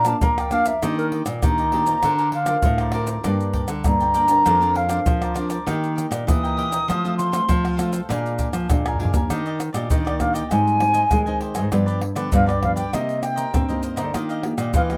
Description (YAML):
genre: samba and choro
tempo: 99 BPM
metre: 4/4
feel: straight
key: Bb major, Eb major from 9.3 s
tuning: A4 = 443 Hz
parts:
  - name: baroque flute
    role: melody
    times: 0.0-15.0 s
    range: Bb4 to Eb6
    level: -23 LUFS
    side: equal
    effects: slapback echo
  - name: cavaquinho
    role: accompaniment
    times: 0.0-15.0 s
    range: D4 to A5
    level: -34 LUFS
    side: equal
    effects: none
  - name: nylon-string guitar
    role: accompaniment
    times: 0.0-15.0 s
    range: F2 to Bb4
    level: -31 LUFS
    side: equal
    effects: none
  - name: nylon-string guitar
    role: bass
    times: 0.0-15.0 s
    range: F2 to C4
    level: -27 LUFS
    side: equal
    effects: none
  - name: maracas, pandeiro, tamborim and surdo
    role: percussion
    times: 0.0-15.0 s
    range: none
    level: -26 LUFS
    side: equal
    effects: none
room: moderate studio ambience, RT60 0.5 s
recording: rough home demo mix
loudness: -21 LUFS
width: mono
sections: 0.0-9.3 A section; 9.3-15.0 B section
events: flute solo 0.0-9.3; drum fill 8.8-9.3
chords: 0.0 Bb; 0.8 Ebmaj7; 2.0 Bbadd9/D; 3.2 Gmadd9; 4.5 Bbadd9/F; 5.7 Eb; 6.9 F; 8.1 Bb7; 9.3 Ebmaj7; 10.5 Abmaj7; 11.7 G7; 12.9 Cm7; 14.1 Ebadd9